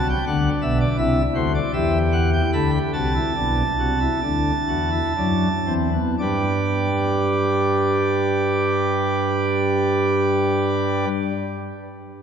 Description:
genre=classical, baroque-style 3-part fugue for pipe organ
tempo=56-85 BPM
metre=4/4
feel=straight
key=G major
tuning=A4 = 440 Hz
part: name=pipe organ, sparkling flutes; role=solo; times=0.0-11.1 s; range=B1 to B5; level=-18 LUFS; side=equal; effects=none
room=wet church reverb, RT60 3.6 s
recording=none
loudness=-18 LUFS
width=side -7 dB against mid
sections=0.0-6.2 A section; 6.2-10.4 B section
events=slowing down 0.0-6.2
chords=0.0 Bm; 1.0 C; 2.5 G; 4.2 D7; 6.2 G

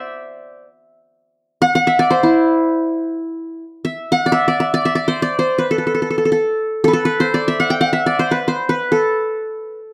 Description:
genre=Turkish makam ensemble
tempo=free time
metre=none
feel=none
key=E makam ussak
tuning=A4 = 438 Hz
part: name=qanun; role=solo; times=0.0-9.9 s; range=E4 to G5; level=-18 LUFS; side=equal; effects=none
room=light reverb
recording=dry, close 1970s-style studio recording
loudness=-17 LUFS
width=mono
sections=0.0-3.6 A section; 3.6-9.9 A section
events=none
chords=none

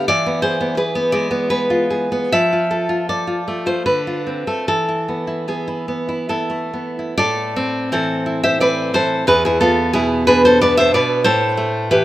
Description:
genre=romantic piece for solo classical guitar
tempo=61-94 BPM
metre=3/4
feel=rubato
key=A minor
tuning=A4 = 441 Hz
part: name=nylon-string guitar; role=solo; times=0.0-12.0 s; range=E2 to E5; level=-15 LUFS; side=equal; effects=none
room=light reverb, small room reverb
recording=rough home demo mix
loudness=-15 LUFS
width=side -15 dB against mid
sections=0.0-7.2 A section; 7.2-12.0 B section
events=none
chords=0.1 E; 2.3 F; 3.8 Dm7; 4.7 E; 7.2 Am; 9.3 E7; 11.3 Am

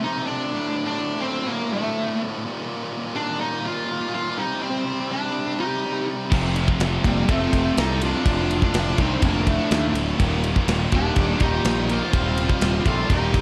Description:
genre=heavy metal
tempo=124 BPM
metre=4/4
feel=straight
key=D phrygian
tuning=A4 = 440 Hz
part: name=high-gain lead guitar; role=melody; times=0.0-13.4 s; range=G3 to F4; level=-29 LUFS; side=equal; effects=distortion, digital delay
part: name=distorted electric guitar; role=riff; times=0.0-13.4 s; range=D2 to G3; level=-30 LUFS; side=equal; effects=overdrive
part: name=high-gain lead guitar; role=second line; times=5.6-13.4 s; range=Bb3 to C5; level=-31 LUFS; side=equal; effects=distortion
part: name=distorted electric guitar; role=riff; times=6.3-13.4 s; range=D2 to C5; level=-33 LUFS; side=equal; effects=none
part: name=scooped high-gain guitar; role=riff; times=6.3-13.4 s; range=D2 to C4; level=-32 LUFS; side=equal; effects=distortion
part: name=fuzz picked electric bass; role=bass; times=6.3-13.4 s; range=D1 to Eb2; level=-27 LUFS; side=equal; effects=overdrive
part: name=tight metal drum kit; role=drums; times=6.3-13.4 s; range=crash cymbal, kick drum, ride cymbal, snare drum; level=-26 LUFS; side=equal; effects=none
room=small room ambience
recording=dark, warm production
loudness=-23 LUFS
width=mono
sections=0.0-13.4 A section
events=none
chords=0.0 F5; 0.5 D5; 2.5 Eb5; 4.4 Cm; 6.3 F; 8.3 Dm/F; 10.2 Eb; 12.1 Cm/Eb

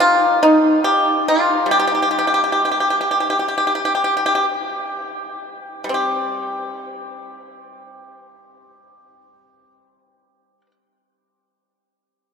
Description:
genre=chinese traditional, Chinese solo plucked strings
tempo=47-73 BPM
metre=4/4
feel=rubato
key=unclear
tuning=A4 = 442 Hz
part: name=pipa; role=solo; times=0.0-10.7 s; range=F3 to G4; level=-16 LUFS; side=equal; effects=none
room=wet cathedral reverb, RT60 6.0 s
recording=in a vast, echoing space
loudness=-15 LUFS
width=side -6 dB against mid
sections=0.0-6.0 A section; 6.0-10.8 B section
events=slowing down 0.0-6.0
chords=none

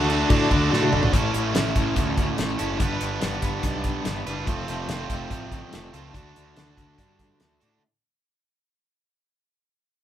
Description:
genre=classic rock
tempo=144 BPM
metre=4/4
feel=straight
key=D major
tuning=A4 = 440 Hz
part: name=barky reed electric piano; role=accompaniment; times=0.0-1.1 s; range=F#4 to A5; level=-29 LUFS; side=equal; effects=overdrive, fast tremolo
part: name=distorted electric guitar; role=riff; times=0.0-7.8 s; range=A2 to B4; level=-28 LUFS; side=right 5 dB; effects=overdrive
part: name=overdriven semi-hollow guitar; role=riff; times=0.0-7.8 s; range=A2 to B4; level=-29 LUFS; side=left 4 dB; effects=tremolo
part: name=fuzz picked electric bass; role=bass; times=0.0-7.8 s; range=F1 to A2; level=-29 LUFS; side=equal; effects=overdrive
part: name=damped 70s drum kit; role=drums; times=0.1-7.7 s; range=crash cymbal, hi-hat, kick drum, snare drum, toms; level=-25 LUFS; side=equal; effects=none
part: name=cowbell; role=percussion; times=0.3-1.0 s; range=none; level=-38 LUFS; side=left 3 dB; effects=none
room=light reverb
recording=band playing live in one room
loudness=-21 LUFS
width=side -11 dB against mid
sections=0.0-1.1 A section; 1.1-7.8 B section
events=drum fill 0.7-1.1; fade-out 1.1-7.8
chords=0.0 D; 1.1 A; 2.8 G; 4.5 F; 6.1 D

